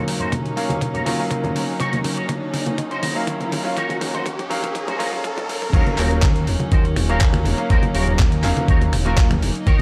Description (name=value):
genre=nu-disco, nu disco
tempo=122 BPM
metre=4/4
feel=straight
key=Eb minor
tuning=A4 = 439 Hz
part: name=bright concert grand piano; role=accompaniment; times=0.0-9.3 s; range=Gb3 to F5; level=-28 LUFS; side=equal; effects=vintage 12-bit sampler grit, low-pass filter, digital delay
part: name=rich chamber string section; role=sustained chords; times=0.0-9.8 s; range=Gb3 to Eb5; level=-31 LUFS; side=equal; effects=sidechain pumping
part: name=riser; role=sound effects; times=1.9-5.7 s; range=none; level=-34 LUFS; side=equal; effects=none
part: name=fat analog bass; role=bass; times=0.1-9.8 s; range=Eb1 to Eb2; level=-26 LUFS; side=equal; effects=high-pass filter
part: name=dusty soul sampler-style drum kit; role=drums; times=0.1-9.8 s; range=crash cymbal, finger snaps, handclaps, hi-hat, toms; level=-30 LUFS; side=equal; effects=overdrive
part: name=electric guitar with an envelope filter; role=riff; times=0.2-9.8 s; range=Eb4 to Db5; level=-32 LUFS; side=equal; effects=ensemble chorus, low-pass filter, digital delay
part: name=congas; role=percussion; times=0.2-9.8 s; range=none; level=-30 LUFS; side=equal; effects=none
part: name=electronic kick drum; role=drums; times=0.3-9.8 s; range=none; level=-20 LUFS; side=equal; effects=overdrive, high-pass filter on kick
room=light reverb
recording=high-pass filter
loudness=-20 LUFS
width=mono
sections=0.0-5.7 A section; 5.7-9.8 B section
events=build-up 0.0-5.7; drum fill 0.0-5.7; filter sweep on grand piano 0.0-5.7; riser 1.9-5.7; drop 5.7-9.8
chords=0.0 Ebm7